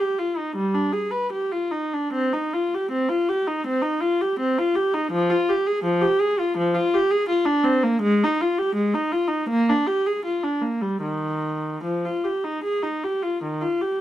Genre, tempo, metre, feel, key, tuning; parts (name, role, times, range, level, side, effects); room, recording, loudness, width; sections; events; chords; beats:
classical, baroque-style suite movement for unaccompanied viola; 81 BPM; 4/4; uneven beats, rubato; Eb major from 8.0 s; A4 = 437 Hz
warm viola; solo; 0.0-14.0 s; Eb3 to B4; -20 LUFS; equal
light reverb; dark, warm production; -20 LUFS; side -12 dB against mid
0.0-14.0 A section
0.56 1.32 | 2.12 2.91 3.66 4.39 | 5.12 5.84 6.56 7.27 | 8.02 8.76 9.49 10.24 | 11.03 11.84 12.64 13.43